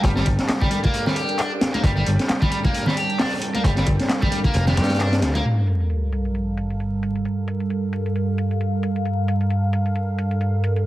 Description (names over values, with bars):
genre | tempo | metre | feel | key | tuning
breakbeat, breaks | 133 BPM | 4/4 | swing 57% on 16ths | G minor | A4 = 442 Hz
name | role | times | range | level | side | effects
phased analog pad | sustained chords | 0.0-10.9 s | G2 to G5 | -24 LUFS | right 1 dB | phaser, chorus, sidechain pumping
overdriven semi-hollow guitar | riff | 0.0-5.4 s | G3 to G4 | -26 LUFS | equal | tube saturation, tape echo
picked electric bass | bass | 0.0-5.4 s | F1 to G2 | -20 LUFS | equal | none
crunchy breakbeat drum kit | drums | 0.0-5.3 s | hi-hat, kick drum, snare drum | -22 LUFS | equal | none
house drum kit | drums | 0.0-10.8 s | handclaps, hi-hat | -31 LUFS | left 1 dB | low-pass filter on snare, low-pass filter on hats
congas | percussion | 0.2-5.4 s | none | -29 LUFS | right 1 dB | none
sub drop | sound effects | 5.4-7.3 s | none | -23 LUFS | equal | none
room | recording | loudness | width
light reverb, small room ambience | heavily compressed radio sound, multiband compression, vinyl crackle | -19 LUFS | side -15 dB against mid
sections
0.0-5.5 A section; 5.5-10.9 B section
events
impact 5.5-7.3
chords
0.0 Gm; 5.5 Gm7